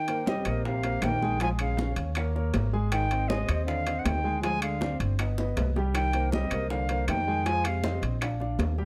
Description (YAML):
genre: Afro-Cuban jazz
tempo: 159 BPM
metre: 4/4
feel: straight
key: Eb major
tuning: A4 = 441 Hz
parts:
  - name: reedy concert flute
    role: melody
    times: 0.0-8.0 s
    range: Eb5 to Ab5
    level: -33 LUFS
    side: equal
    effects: none
  - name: mellow trombone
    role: second line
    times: 0.0-8.0 s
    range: C3 to F3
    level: -38 LUFS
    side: equal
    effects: none
  - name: warm grand piano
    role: accompaniment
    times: 0.1-8.8 s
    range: G3 to Ab5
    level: -36 LUFS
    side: equal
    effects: none
  - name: bongos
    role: percussion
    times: 0.1-8.8 s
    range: none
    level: -42 LUFS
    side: equal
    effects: none
  - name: congas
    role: percussion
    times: 0.1-8.8 s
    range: none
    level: -39 LUFS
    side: equal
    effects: none
  - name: timbales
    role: percussion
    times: 0.1-8.8 s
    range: none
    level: -38 LUFS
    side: equal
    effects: none
  - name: upright bass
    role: bass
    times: 0.5-8.8 s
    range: G1 to F2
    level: -31 LUFS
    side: equal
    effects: none
  - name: claves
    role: percussion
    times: 0.5-8.4 s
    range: none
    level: -44 LUFS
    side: equal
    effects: none
room: little or no reverb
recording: close, detailed microphones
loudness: -28 LUFS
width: mono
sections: 0.0-8.8 A section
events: drum fill 5.4-5.9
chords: 0.0 Eb69; 1.4 Bbm7; 2.2 Eb5; 2.9 Abmaj7#11; 4.4 Dm7b5; 5.2 Gaug; 5.9 Cm11; 7.5 Fm7; 8.2 Bb